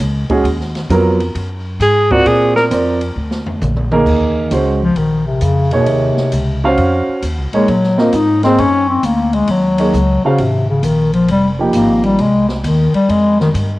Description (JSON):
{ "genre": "modal jazz", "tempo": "133 BPM", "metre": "4/4", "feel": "swing 66% on 8ths", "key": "Eb dorian from 4.1 s", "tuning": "A4 = 440 Hz", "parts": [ { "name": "upright bass", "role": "bass", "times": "0.0-13.8 s", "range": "F1 to A#2", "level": "-19 LUFS", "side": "equal", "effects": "none" }, { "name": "open jazz drum kit", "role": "drums", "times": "0.0-13.7 s", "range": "crash cymbal, hi-hat, kick drum, ride cymbal, snare drum, toms", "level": "-26 LUFS", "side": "equal", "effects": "none" }, { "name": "dark grand piano", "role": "accompaniment", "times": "0.3-12.2 s", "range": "F3 to F5", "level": "-16 LUFS", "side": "right 2 dB", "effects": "none" }, { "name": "breathy tenor saxophone", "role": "melody", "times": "1.8-2.7 s", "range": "F#4 to A#4", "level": "-13 LUFS", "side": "equal", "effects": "cassette tape" }, { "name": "mellow bass clarinet", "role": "second line", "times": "4.8-13.5 s", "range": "Cb3 to Eb4", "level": "-13 LUFS", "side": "left 2 dB", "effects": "none" } ], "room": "moderate spring reverb, RT60 2.3 s", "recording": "home recording on cassette", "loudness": "-12 LUFS", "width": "side -18 dB against mid", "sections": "0.0-4.1 A section; 4.1-13.8 A section", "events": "tenor saxophone solo 0.0-4.1; drum fill 3.2-4.1; bass clarinet solo 4.1-13.8", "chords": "0.0 G#m11; 2.3 A#; 4.1 Ebm9; 11.3 Fm9", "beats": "0.00 | 0.45 0.90 1.35 1.80 | 2.26 2.71 3.16 3.61 | 4.06 4.51 4.97 5.42 | 5.87 6.32 6.78 7.23 | 7.68 8.13 8.58 9.04 | 9.49 9.94 10.39 10.85 | 11.30 11.75 12.20 12.65 | 13.10 13.56" }